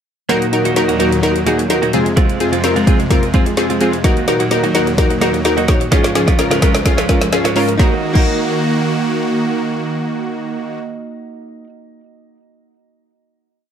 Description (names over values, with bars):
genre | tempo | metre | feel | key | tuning
dance-pop | 128 BPM | 4/4 | straight | Eb dorian | A4 = 441 Hz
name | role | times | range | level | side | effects
wavetable chord stab | accompaniment | 0.3-11.2 s | C4 to Db5 | -17 LUFS | left 2 dB | sidechain pumping
supersaw chords | sustained chords | 0.3-10.8 s | Db2 to Gb4 | -20 LUFS | equal | sidechain pumping
direct-recorded clean electric guitar | riff | 0.3-11.7 s | Ab3 to Gb4 | -21 LUFS | right 6 dB | wide subtle chorus, analog delay
deep house drum kit | drums | 0.3-8.3 s | crash cymbal, hi-hat, kick drum, snare drum | -16 LUFS | equal | analog delay
room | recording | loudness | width
light reverb, digital ambience | echo-heavy mix | -13 LUFS | side -8 dB against mid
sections
0.3-7.8 build; 7.8-11.5 final chord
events
build-up 0.3-7.8; drum fill 0.3-7.8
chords
0.3 Ebm; 1.9 Fm; 4.0 Ebm; 5.9 Db; 7.8 Ebm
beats
| 0.29 0.76 1.23 1.70 | 2.17 2.64 3.11 3.58 | 4.04 4.51 4.98 5.45 | 5.92 6.39 6.86 7.33 | 7.79 8.26 8.73 9.20 | 9.67 10.14 10.61 11.08